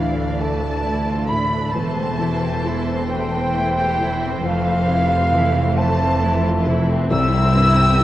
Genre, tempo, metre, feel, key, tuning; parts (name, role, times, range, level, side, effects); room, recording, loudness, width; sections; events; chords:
cinematic; 45 BPM (dotted quarters); 6/8; rubato; A4 = 439 Hz
rich symphonic violin section; melody; 0.0-8.0 s; F5 to E6; -30 LUFS; left 1 dB
rich symphonic violin section; second line; 0.0-8.0 s; G3 to E5; -28 LUFS; left 1 dB
silver concert flute; second line; 0.0-8.0 s; F5 to E6; -22 LUFS; equal
felt-muted upright piano; accompaniment; 0.0-8.0 s; C2 to C5; -24 LUFS; left 1 dB
rich studio viola section; accompaniment; 0.0-8.0 s; E3 to E4; -28 LUFS; equal
concert harp; arpeggios; 0.0-8.0 s; C3 to C6; -26 LUFS; left 4 dB
clear symphonic double bass section; bass; 0.0-8.0 s; E1 to D2; -26 LUFS; right 2 dB
rich symphonic cello section; bass; 0.0-8.0 s; C2 to F2; -23 LUFS; right 2 dB
timpani; percussion; 7.1-8.0 s; C3; -27 LUFS; equal
moderate scoring stage reverb, RT60 2.0 s; worn, warbling old tape, cassette tape, warbly pitch drift; -17 LUFS; side -14 dB against mid
0.0-8.0 A section
0.0 Dmadd9; 1.7 Am7/E; 4.4 Fmaj7; 7.1 C